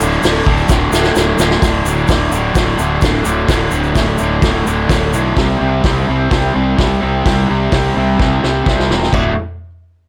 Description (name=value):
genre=garage rock duo or trio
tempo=128 BPM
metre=4/4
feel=straight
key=unclear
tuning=A4 = 442 Hz
part: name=raw garage guitar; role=riff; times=0.0-9.3 s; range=D2 to F#4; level=-17 LUFS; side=equal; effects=overdrive
part: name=fuzz fingered electric bass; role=bass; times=0.0-9.3 s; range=D1 to C2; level=-20 LUFS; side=equal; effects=overdrive
part: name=egg shaker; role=percussion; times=0.0-5.2 s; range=none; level=-32 LUFS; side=equal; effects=none
part: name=vintage drum kit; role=drums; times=0.2-9.2 s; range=crash cymbal, hi-hat, kick drum, snare drum, toms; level=-19 LUFS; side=equal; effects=none
room=light reverb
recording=none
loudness=-14 LUFS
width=mono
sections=0.0-1.6 A section; 1.6-9.1 B section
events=drum fill 0.7-1.6, 8.2-9.1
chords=0.0 D5; 5.4 C5; 9.1 D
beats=0.24 0.70 1.16 | 1.63 2.09 2.56 3.02 | 3.49 3.96 4.43 4.90 | 5.37 5.83 6.30 6.77 | 7.24 7.71 8.18 8.65 | 9.11